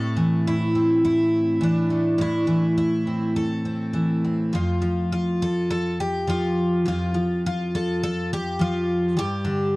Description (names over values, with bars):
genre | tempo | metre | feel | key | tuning
folk, solo fingerstyle acoustic guitar | 103 BPM | 4/4 | straight | unclear | A4 = 443 Hz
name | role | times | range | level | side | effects
picked twelve-string acoustic guitar | solo | 0.0-9.8 s | F2 to A4 | -20 LUFS | equal | none
room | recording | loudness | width
little or no reverb | dry, close 1970s-style studio recording | -20 LUFS | side -23 dB against mid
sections
0.0-9.8 A section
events
none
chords
0.0 Am; 4.5 N.C.; 9.2 G5